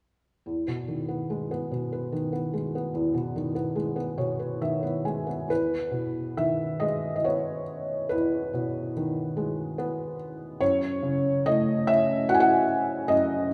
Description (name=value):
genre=classical, lyrical solo piano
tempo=71 BPM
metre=3/4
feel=uneven beats, rubato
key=E major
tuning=A4 = 440 Hz
part: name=felt-muted upright piano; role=solo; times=0.5-13.5 s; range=E2 to G#5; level=-27 LUFS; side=equal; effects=none
room=wet recital hall reverb, RT60 1.7 s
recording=recorded in a church or concert hall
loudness=-27 LUFS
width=mono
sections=0.5-5.5 A section; 5.5-13.5 B section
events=felt piano fill 3.8-5.5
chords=0.5 Emaj7; 10.6 F#m